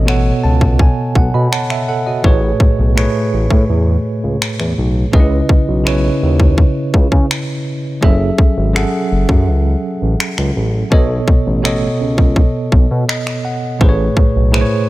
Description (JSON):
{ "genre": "contemporary R&B", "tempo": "83 BPM", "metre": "4/4", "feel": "straight", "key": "unclear", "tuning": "A4 = 440 Hz", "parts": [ { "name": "bell-like tine electric piano", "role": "accompaniment", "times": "0.0-14.9 s", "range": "A2 to B5", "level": "-17 LUFS", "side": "right 1 dB", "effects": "fast stereo tremolo" }, { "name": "smooth synth bass", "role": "bass", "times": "0.0-14.6 s", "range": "F#1 to C#3", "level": "-15 LUFS", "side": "equal", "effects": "none" }, { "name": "trap drum kit", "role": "drums", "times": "0.1-14.7 s", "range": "finger snaps, kick drum", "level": "-14 LUFS", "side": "equal", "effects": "overdrive" } ], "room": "digital ambience", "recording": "none", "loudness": "-12 LUFS", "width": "side -17 dB against mid", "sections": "0.0-14.9 A section", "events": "tine electric piano fill 0.1-2.2, 12.7-13.8", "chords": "0.0 B7; 5.1 C#m7; 8.0 F#m7; 10.9 B7; 13.8 Amaj7", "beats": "0.07 0.80 1.52 | 2.24 2.96 3.69 4.41 | 5.13 5.86 6.58 7.30 | 8.02 8.75 9.47 10.19 | 10.92 11.64 12.36 13.09 | 13.81 14.53" }